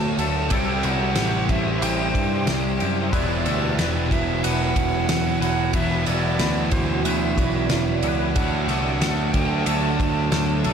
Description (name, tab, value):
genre	rock, shoegaze and dream pop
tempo	92 BPM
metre	4/4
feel	straight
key	E minor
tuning	A4 = 443 Hz
part	bright silver concert flute	melody	0.0-10.7 s	C5 to A5	-29 LUFS	right 3 dB	digital delay
part	granular cloud pad	sustained chords	0.0-10.7 s	F#3 to C6	-32 LUFS	right 1 dB	built-in reverb
part	biting overdriven guitar	riff	0.0-10.7 s	C3 to E4	-27 LUFS	right 12 dB	reverse reverb
part	thick fuzz guitar	riff	0.0-10.7 s	E2 to D4	-26 LUFS	left 8 dB	distortion, ensemble chorus
part	growling picked electric bass	bass	0.0-10.7 s	E1 to G2	-26 LUFS	equal	overdrive
part	twangy electric guitar	arpeggios	0.2-10.7 s	G4 to B5	-34 LUFS	left 10 dB	analog chorus, digital delay
part	loose indie drum kit	drums	0.2-10.7 s	kick drum, ride cymbal, snare drum	-25 LUFS	equal	none
room	light reverb, small room ambience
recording	none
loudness	-19 LUFS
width	side -7 dB against mid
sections	0.0-10.7 A section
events	none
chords	0.0 D; 0.5 C; 3.1 Esus2; 8.4 D